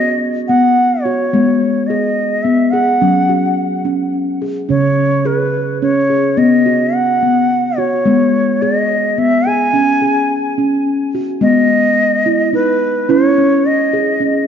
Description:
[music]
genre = world meditative, meditative tuned percussion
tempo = 107 BPM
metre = 3/4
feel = straight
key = C# minor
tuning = A4 = 439 Hz
[part]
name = bright bansuri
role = melody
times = 0.0-14.5 s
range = B4 to G#5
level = -15 LUFS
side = right 1 dB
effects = ping-pong delay
[part]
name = steel tongue drum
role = arpeggios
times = 0.0-14.5 s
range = C#3 to G#4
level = -14 LUFS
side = left 1 dB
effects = ping-pong delay
[sound]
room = moderate scoring stage reverb, RT60 1.9 s, studio reverb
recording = dark, warm production, nothing above 7.5 kHz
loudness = -12 LUFS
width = side -8 dB against mid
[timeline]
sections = 0.0-11.4 A section; 11.4-14.5 B section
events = none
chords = 0.0 B5; 1.3 G#m; 3.0 F#5; 4.7 C#5; 6.4 B; 8.1 G#m; 9.7 C#5; 11.4 G#m; 13.1 C#m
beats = 0.21 0.77 | 1.33 1.89 2.46 | 3.02 3.58 4.14 | 4.70 5.26 5.82 | 6.38 6.94 7.50 | 8.06 8.62 9.19 | 9.75 10.31 10.87 | 11.43 11.98 12.54 | 13.10 13.66 14.22

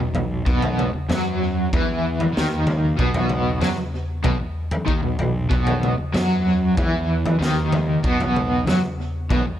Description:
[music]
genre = psychedelic rock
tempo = 95 BPM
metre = 4/4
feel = straight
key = B major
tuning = A4 = 438 Hz
[part]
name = overdriven semi-hollow guitar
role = riff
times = 0.0-9.5 s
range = B2 to F#3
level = -21 LUFS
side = equal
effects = tremolo
[part]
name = fuzz fingered electric bass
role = bass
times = 0.0-9.5 s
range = B1 to F#2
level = -26 LUFS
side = equal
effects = overdrive
[part]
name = raw garage drum kit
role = drums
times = 0.1-9.4 s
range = kick drum, snare drum, toms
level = -24 LUFS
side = equal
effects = none
[sound]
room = light reverb, small room ambience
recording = echo-heavy mix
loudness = -19 LUFS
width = side -11 dB against mid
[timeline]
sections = 0.0-9.6 A section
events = none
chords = 0.0 B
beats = 0.46 1.09 | 1.73 2.36 2.99 3.62 | 4.25 4.88 5.51 6.14 | 6.78 7.41 8.04 8.67 | 9.30

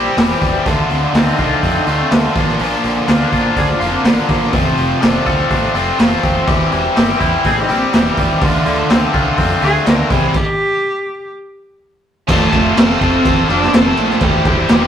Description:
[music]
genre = quiet-loud alternative rock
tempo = 124 BPM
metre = 4/4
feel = straight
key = F major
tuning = A4 = 440 Hz
[part]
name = twangy electric guitar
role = arpeggios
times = 0.0-10.3 s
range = Bb2 to A4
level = -20 LUFS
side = left 3 dB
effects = tremolo
[part]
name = biting overdriven guitar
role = riff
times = 0.0-14.9 s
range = Bb2 to A4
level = -16 LUFS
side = equal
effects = none
[part]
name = growling fingered electric bass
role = bass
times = 0.0-14.9 s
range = E1 to Bb2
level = -22 LUFS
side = equal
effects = overdrive
[part]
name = raw garage drum kit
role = drums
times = 0.2-14.8 s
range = crash cymbal, hi-hat, kick drum, snare drum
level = -15 LUFS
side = equal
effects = none
[part]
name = dark cello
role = melody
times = 0.9-14.9 s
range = C3 to Bb4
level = -20 LUFS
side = right 1 dB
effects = none
[sound]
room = moderate stone room reverb, RT60 1.1 s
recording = rough rehearsal-room recording, tube saturation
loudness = -12 LUFS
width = side -9 dB against mid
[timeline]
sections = 0.0-12.3 A section; 12.3-14.9 B section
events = cello solo 0.0-12.3; stop 10.4-12.3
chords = 0.0 C/E; 0.7 Dm7; 2.4 Bb; 4.5 F6; 6.5 C/E; 8.4 Dm7; 10.1 C; 12.3 F; 14.2 C/E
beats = 0.18 | 0.66 1.15 1.63 2.12 | 2.60 3.09 3.57 4.06 | 4.54 5.03 5.51 6.00 | 6.48 6.96 7.45 7.93 | 8.42 8.90 9.38 9.87 | 10.35 10.84 11.32 11.80 | 12.28 12.77 13.25 13.73 | 14.21 14.69

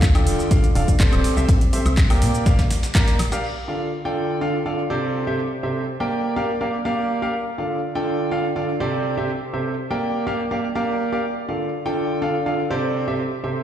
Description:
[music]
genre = piano house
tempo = 123 BPM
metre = 4/4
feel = straight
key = D minor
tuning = A4 = 440 Hz
[part]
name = organ-like FM bass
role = bass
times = 0.0-3.3 s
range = D1 to Bb2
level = -20 LUFS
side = equal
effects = sidechain pumping
[part]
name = dusty soul sampler-style drum kit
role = drums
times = 0.0-3.4 s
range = hi-hat, snare drum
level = -36 LUFS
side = equal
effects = none
[part]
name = electronic kick drum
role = drums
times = 0.0-3.1 s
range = none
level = -17 LUFS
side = equal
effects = none
[part]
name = garage drum kit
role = drums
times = 0.0-3.5 s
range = crash cymbal, handclaps, hi-hat, shaker, woodblock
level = -28 LUFS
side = equal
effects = overdrive, low-pass filter on hats, low-pass filter on perc, low-pass filter on snare, low-pass filter on cymbals
[part]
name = clear concert grand piano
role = riff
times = 0.1-13.6 s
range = C3 to Bb5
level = -22 LUFS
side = right 1 dB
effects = sidechain pumping, low-pass filter, digital delay
[sound]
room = moderate lush hall reverb, RT60 2.1 s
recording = played on a big sound system in a bare room, stone room reverb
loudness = -19 LUFS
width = side -10 dB against mid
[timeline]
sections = 0.0-3.4 A section; 3.4-13.6 B section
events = none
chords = 0.0 Dm; 1.2 Am7/C; 2.2 Bb6; 3.4 Dm; 5.1 Am7/C; 6.1 Bb6; 7.3 Dm; 9.0 Am7/C; 10.0 Bb6; 11.2 Dm; 12.9 Am7/C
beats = 0.02 0.51 1.00 | 1.49 1.97 2.46 2.95 | 3.44 3.93 4.41 4.90 | 5.39 5.88 6.37 6.85 | 7.34 7.83 8.32 8.80 | 9.29 9.78 10.27 10.76 | 11.24 11.73 12.22 12.71 | 13.19

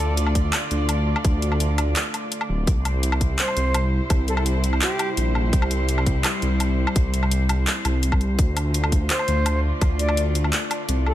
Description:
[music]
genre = half-time drum and bass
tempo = 168 BPM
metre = 4/4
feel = half-time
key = D minor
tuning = A4 = 440 Hz
[part]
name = bright reedy silver concert flute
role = melody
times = 0.0-0.1, 3.4-5.1, 9.1-11.1 s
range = G4 to D5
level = -29 LUFS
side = equal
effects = dub echo
[part]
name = warm chamber cello section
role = sustained chords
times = 0.0-11.1 s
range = C3 to D5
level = -28 LUFS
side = equal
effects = sidechain pumping
[part]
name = dark detuned saw bass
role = bass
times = 0.0-11.1 s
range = D1 to D2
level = -22 LUFS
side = equal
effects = none
[part]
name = drum and bass drum kit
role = drums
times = 0.2-11.1 s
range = handclaps, hi-hat, woodblock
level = -26 LUFS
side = left 1 dB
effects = overdrive, small room ambience
[part]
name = electronic kick drum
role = drums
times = 0.4-9.9 s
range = none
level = -20 LUFS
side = equal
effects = overdrive, small room ambience
[sound]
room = light reverb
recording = none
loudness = -19 LUFS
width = side -13 dB against mid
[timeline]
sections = 0.0-11.1 A section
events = none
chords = 0.0 Dm; 2.7 C; 8.4 Dm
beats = 0.17 0.53 0.89 | 1.24 1.60 1.96 2.32 | 2.67 3.03 3.39 3.74 | 4.10 4.46 4.82 5.17 | 5.53 5.89 6.24 6.60 | 6.96 7.32 7.67 8.03 | 8.39 8.74 9.10 9.46 | 9.82 10.17 10.53 10.89

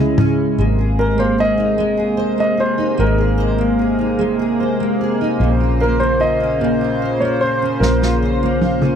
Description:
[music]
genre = six-eight pop ballad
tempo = 50 BPM (dotted quarters)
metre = 6/8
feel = straight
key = Ab major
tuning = A4 = 443 Hz
[part]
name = fingerpicked steel-string acoustic guitar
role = accompaniment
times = 0.0-9.0 s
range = Bb2 to C5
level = -19 LUFS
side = equal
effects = double-tracked left and right
[part]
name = chorused pulse-width pad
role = sustained chords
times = 0.0-9.0 s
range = C3 to C5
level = -21 LUFS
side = right 1 dB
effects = none
[part]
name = vintage muted fingered electric bass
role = bass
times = 0.0-9.0 s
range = Ab1 to Db2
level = -20 LUFS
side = equal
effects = none
[part]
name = unplugged drum kit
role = drums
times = 0.2-0.4, 7.8-9.0 s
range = snare drum, toms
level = -19 LUFS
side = left 1 dB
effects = none
[part]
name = warm concert grand piano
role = melody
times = 1.0-9.0 s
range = Bb4 to Eb5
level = -20 LUFS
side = equal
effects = none
[sound]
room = light reverb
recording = dry, close 1970s-style studio recording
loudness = -14 LUFS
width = side -8 dB against mid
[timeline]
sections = 0.6-9.0 A section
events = drum fill 0.0-0.6, 7.8-9.0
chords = 0.0 Dbm; 0.6 Abadd9; 5.4 Bbmadd9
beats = | 0.59 1.79 | 3.00 4.20 | 5.41 6.61 | 7.81

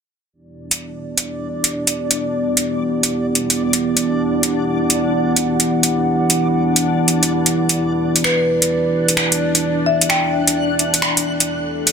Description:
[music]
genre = future garage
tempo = 129 BPM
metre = 4/4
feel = swing 63% on 16ths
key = E minor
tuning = A4 = 439 Hz
[part]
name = dark analog pad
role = sustained chords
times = 0.3-11.9 s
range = E3 to F#5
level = -19 LUFS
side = equal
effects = wide subtle chorus
[part]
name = backwards swelling texture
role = texture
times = 1.3-11.9 s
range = D4 to F#6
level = -24 LUFS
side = left 2 dB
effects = built-in reverb
[part]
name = garage drum kit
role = drums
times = 0.7-11.9 s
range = finger snaps, hi-hat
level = -17 LUFS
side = equal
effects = soft clipping on snare
[part]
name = marimba with medium mallets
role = melody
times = 8.2-10.5 s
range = B4 to G5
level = -21 LUFS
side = equal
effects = tape echo
[sound]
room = moderate huge ambient reverb, RT60 4.4 s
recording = dense, heavily limited modern master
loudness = -15 LUFS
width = side -6 dB against mid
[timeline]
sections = 0.3-11.9 A section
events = none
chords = 0.3 Em9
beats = | 0.33 0.79 1.26 1.72 | 2.19 2.65 3.12 3.58 | 4.05 4.51 4.98 5.45 | 5.91 6.38 6.84 7.30 | 7.77 8.23 8.70 9.16 | 9.63 10.10 10.56 11.03 | 11.49

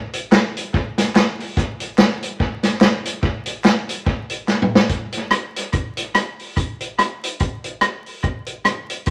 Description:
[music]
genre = ska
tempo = 144 BPM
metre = 4/4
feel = swing 57% on 8ths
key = none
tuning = none
[part]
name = vintage drum kit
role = drums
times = 0.1-9.1 s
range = hi-hat, kick drum, rim click, snare drum, toms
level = -20 LUFS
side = equal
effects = tape echo
[part]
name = group handclap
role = percussion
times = 0.3-4.6 s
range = none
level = -36 LUFS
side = equal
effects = none
[sound]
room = moderate studio reverb, RT60 0.9 s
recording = vinyl crackle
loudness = -20 LUFS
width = mono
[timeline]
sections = 0.0-4.9 A section; 4.9-9.1 B section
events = drum fill 4.5-4.9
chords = none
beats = 0.32 0.74 1.16 | 1.57 1.99 2.40 2.82 | 3.23 3.65 4.07 4.48 | 4.90 5.31 5.73 6.15 | 6.56 6.98 7.40 7.81 | 8.23 8.64 9.06

